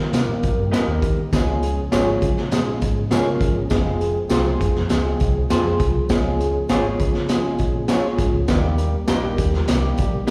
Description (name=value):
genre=uptempo 1960s-style soul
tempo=100 BPM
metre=4/4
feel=straight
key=unclear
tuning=A4 = 441 Hz
part: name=percussive tonewheel organ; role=sustained chords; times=0.0-10.3 s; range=Eb3 to Ab4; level=-33 LUFS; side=equal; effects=none
part: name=vintage muted fingered electric bass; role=bass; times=0.0-10.3 s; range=F1 to Eb3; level=-26 LUFS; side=equal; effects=none
part: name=barky tine electric piano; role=accompaniment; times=0.1-10.3 s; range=G3 to Bb4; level=-27 LUFS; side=equal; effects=phaser, plate reverb, slapback echo
part: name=raw garage drum kit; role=drums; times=0.1-10.3 s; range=hi-hat, kick drum, snare drum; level=-24 LUFS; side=equal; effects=none
part: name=tambourine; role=percussion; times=0.1-10.3 s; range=none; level=-43 LUFS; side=equal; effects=none
part: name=electric guitar through a small old amp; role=stabs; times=0.7-10.3 s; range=F4 to Eb5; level=-28 LUFS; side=equal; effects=warbly pitch drift, plate reverb, slapback echo
room=moderate club reverb, RT60 0.8 s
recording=live gig heard through the venue's PA, recital hall reverb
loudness=-20 LUFS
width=mono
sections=0.0-10.3 A section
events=none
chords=0.0 Eb; 1.3 Db; 3.7 Fm; 6.1 Db; 8.5 Eb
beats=0.14 0.73 | 1.33 1.93 2.53 3.12 | 3.72 4.32 4.91 5.51 | 6.11 6.70 7.30 7.90 | 8.49 9.09 9.69 10.28